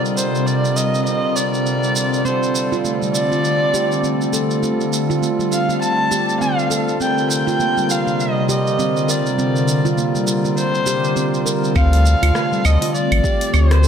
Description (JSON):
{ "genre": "organic downtempo", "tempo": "101 BPM", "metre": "4/4", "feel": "swing 58% on 16ths", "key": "unclear", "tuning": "A4 = 440 Hz", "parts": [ { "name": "pedal harmonium", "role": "accompaniment", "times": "0.0-13.9 s", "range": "D3 to Bb4", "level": "-25 LUFS", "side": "right 3 dB", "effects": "sidechain pumping, ping-pong delay" }, { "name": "ethereal airy pad", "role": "sustained chords", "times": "0.0-13.9 s", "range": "C3 to F4", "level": "-21 LUFS", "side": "left 2 dB", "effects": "ensemble chorus, built-in reverb, sidechain pumping" }, { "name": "deep house drum kit", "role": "drums", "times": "0.1-13.9 s", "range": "claves, hi-hat, rim click, shaker", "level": "-26 LUFS", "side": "right 4 dB", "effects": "none" }, { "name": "dark kamancheh", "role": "melody", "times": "0.2-13.9 s", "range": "C5 to A5", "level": "-21 LUFS", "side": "equal", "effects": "ping-pong delay" }, { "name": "handpan", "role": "arpeggios", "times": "2.3-13.9 s", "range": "G3 to Bb4", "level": "-23 LUFS", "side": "right 2 dB", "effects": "ping-pong delay" }, { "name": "warm sub bass", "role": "bass", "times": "11.8-13.9 s", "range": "A1 to D2", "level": "-13 LUFS", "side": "equal", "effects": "sidechain pumping" }, { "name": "electronic kick drum", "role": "drums", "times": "11.8-13.4 s", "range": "none", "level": "-20 LUFS", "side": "equal", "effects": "none" } ], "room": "moderate digital room reverb, RT60 1.2 s, digital ambience", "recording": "none", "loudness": "-15 LUFS", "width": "side -8 dB against mid", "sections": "0.0-11.8 A section; 11.8-13.9 B section", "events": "filter sweep on ambient pad 0.0-11.8", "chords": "0.0 Cm7; 2.3 Dm7; 7.0 C7(no3); 11.8 Dm7" }